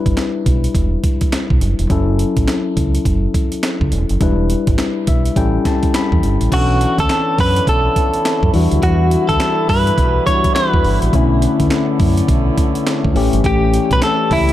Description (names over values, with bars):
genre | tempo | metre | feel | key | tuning
R&B, new jack swing | 104 BPM | 4/4 | swing 61% on 16ths | E dorian | A4 = 440 Hz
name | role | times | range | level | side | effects
tine electric piano | accompaniment | 0.0-14.5 s | D3 to B5 | -19 LUFS | left 4 dB | none
deep dub fingered electric bass | bass | 0.1-14.5 s | E1 to G2 | -16 LUFS | right 1 dB | none
breakbeat sampler-style drum kit | drums | 0.1-14.5 s | crash cymbal, handclaps, hi-hat, kick drum, snare drum | -18 LUFS | right 1 dB | none
direct-recorded clean electric guitar | melody | 6.5-14.5 s | E4 to C#5 | -17 LUFS | equal | tape echo
warm French horn section | sustained chords | 6.5-14.5 s | D3 to C#5 | -24 LUFS | right 2 dB | none
room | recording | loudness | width
light reverb, digital ambience | dark, warm production | -13 LUFS | side -13 dB against mid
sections
0.0-6.5 A section; 6.5-14.5 B section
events
tine electric piano fill 4.8-6.5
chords
0.0 Em7; 1.9 F#m7; 4.2 Em7; 5.4 A7; 6.5 Bm11; 8.5 Em9; 11.1 Bm11; 13.2 A7